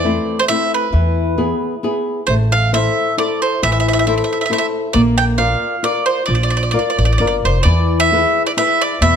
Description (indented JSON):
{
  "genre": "italian folk, Italian serenade",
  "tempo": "134 BPM",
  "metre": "3/4",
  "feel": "swing 54% on 8ths",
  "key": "A minor",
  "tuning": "A4 = 440 Hz",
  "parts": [
    { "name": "bowl-back mandolin", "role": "melody", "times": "0.0-9.2 s", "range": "B4 to G5", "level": "-17 LUFS", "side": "right 3 dB", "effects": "none" },
    { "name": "flamenco guitar", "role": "accompaniment", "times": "0.0-9.2 s", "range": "B2 to D5", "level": "-19 LUFS", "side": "left 3 dB", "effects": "none" },
    { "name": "upright bass", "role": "bass", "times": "0.0-9.2 s", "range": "F1 to E2", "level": "-16 LUFS", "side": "equal", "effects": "none" }
  ],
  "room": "light reverb",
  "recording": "close, detailed microphones",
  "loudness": "-14 LUFS",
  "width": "side -7 dB against mid",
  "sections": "0.0-9.2 A section",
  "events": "none",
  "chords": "0.0 Am/E; 0.9 E; 2.3 Am; 5.0 Bb; 7.7 E"
}